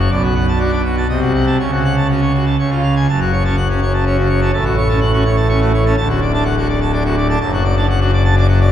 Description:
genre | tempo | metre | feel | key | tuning
classical, organ toccata | 125 BPM | 3/4 | straight | F# minor | A4 = 440 Hz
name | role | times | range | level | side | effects
pipe organ, full organ | solo | 0.0-8.7 s | D1 to A5 | -13 LUFS | equal | none
room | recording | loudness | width
wet church reverb, RT60 3.1 s | recorded in a church or concert hall | -13 LUFS | side -10 dB against mid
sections
0.0-3.1 A section; 3.1-8.7 B section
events
none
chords
0.1 Bm7; 1.1 Cdim7; 1.6 F#m/C#; 2.6 C#; 3.1 F#m; 4.5 F#m/A; 6.0 D; 7.4 D/F#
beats
| 0.12 0.60 1.09 | 1.59 2.09 2.59 | 3.09 3.57 4.05 | 4.54 5.01 5.50 | 5.97 6.45 6.92 | 7.40 7.88 8.36

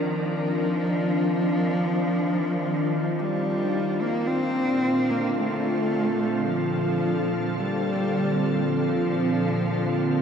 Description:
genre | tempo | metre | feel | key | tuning
ambient | free time | none | none | unclear | A4 = 439 Hz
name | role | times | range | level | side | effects
warm cello | melody | 0.0-10.2 s | F3 to C4 | -26 LUFS | equal | diffuse ambient delay
soft additive organ-like pad | sustained chords | 0.0-10.2 s | Bb2 to Bb4 | -24 LUFS | equal | ensemble chorus, built-in reverb
room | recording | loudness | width
wet huge ambient reverb, RT60 8.6 s | dreamy mix soaked in reverb, cassette tape | -22 LUFS | side -7 dB against mid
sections
0.0-10.2 A section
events
none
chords
0.0 Cm11; 4.3 Bbmaj9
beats
free time

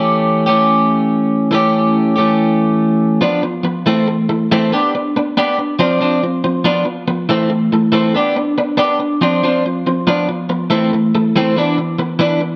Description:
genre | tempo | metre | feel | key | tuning
rock | 140 BPM | 4/4 | straight | unclear | A4 = 440 Hz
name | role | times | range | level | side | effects
twelve-string electric guitar | solo | 0.0-12.6 s | E3 to G4 | -15 LUFS | equal | spring reverb
room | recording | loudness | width
moderate studio reverb, RT60 0.6 s | dark, warm production | -15 LUFS | mono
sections
0.0-3.2 A section; 3.2-12.6 B section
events
none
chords
0.0 A7; 3.2 Bdim/F; 3.9 Am; 4.7 Bm; 5.8 Dm7; 6.6 Bdim/F; 7.3 Am; 8.1 Bm; 9.2 Dm7; 10.1 Bdim/F; 10.7 Am; 11.6 E5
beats
0.24 0.67 1.09 | 1.52 1.95 2.37 2.80 | 3.22 3.65 4.08 4.51 | 4.93 5.36 5.79 6.22 | 6.64 7.07 7.50 7.92 | 8.35 8.78 9.21 9.63 | 10.06 10.49 10.91 11.34 | 11.77 12.20

